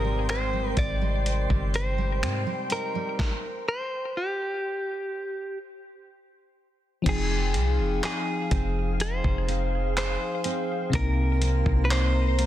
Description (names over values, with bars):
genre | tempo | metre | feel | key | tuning
contemporary R&B | 62 BPM | 4/4 | straight | unclear | A4 = 439 Hz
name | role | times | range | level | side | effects
direct-recorded clean electric guitar | melody | 0.0-12.5 s | G4 to D5 | -31 LUFS | equal | vibrato effect, ping-pong delay
FM electric piano | accompaniment | 0.0-12.5 s | C3 to G5 | -33 LUFS | left 5 dB | chorus
glassy FM pad | sustained chords | 0.0-12.5 s | Ab4 to C6 | -36 LUFS | equal | ensemble chorus, built-in reverb
fingerpicked steel-string acoustic guitar | arpeggios | 0.0-12.5 s | Ab2 to Ab4 | -34 LUFS | right 7 dB | ping-pong delay
soft 808-style bass | bass | 0.0-12.5 s | F1 to Ab2 | -26 LUFS | equal | none
dusty soul sampler-style drum kit | drums | 0.3-12.5 s | crash cymbal, finger snaps, handclaps, hi-hat, kick drum, snare drum | -30 LUFS | equal | soft clipping on snare
room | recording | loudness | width
digital ambience | dense, heavily limited modern master | -24 LUFS | side -12 dB against mid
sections
0.0-7.1 A section; 7.1-12.5 B section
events
stop 3.2-7.1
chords
0.0 Abmaj7; 3.2 N.C.; 7.1 Fm7; 10.9 Cm7